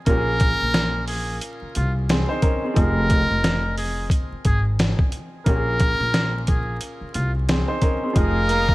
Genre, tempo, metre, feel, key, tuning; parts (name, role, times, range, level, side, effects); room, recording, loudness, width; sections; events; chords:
hip hop, boom-bap hip-hop; 89 BPM; 4/4; swing 59% on 16ths; A4 = 440 Hz
clear upright piano; accompaniment; 0.0-8.7 s; Bb2 to C5; -27 LUFS; equal; high-pass filter, low-pass filter
trumpet with metal mute; melody; 0.1-8.7 s; F4 to Bb4; -25 LUFS; equal; high-pass filter, low-pass filter, ping-pong delay
upright bass; bass; 0.1-8.7 s; F1 to C2; -24 LUFS; equal
trip hop sampler-style drum kit; drums; 0.1-8.7 s; hi-hat, kick drum, snare drum; -21 LUFS; equal
clear studio string section; sustained chords; 8.2-8.7 s; Ab4 to Eb6; -32 LUFS; equal; high-pass filter, low-pass filter
bright saxophone section; stabs; 8.5-8.7 s; Bb3 to Bb4; -23 LUFS; right 1 dB; high-pass filter, low-pass filter
light reverb, small room ambience; vinyl crackle; -19 LUFS; side -19 dB against mid
0.0-8.2 A section
0.1 Bbm7; 2.8 Fm7; 5.5 Bbm7; 8.2 Fm7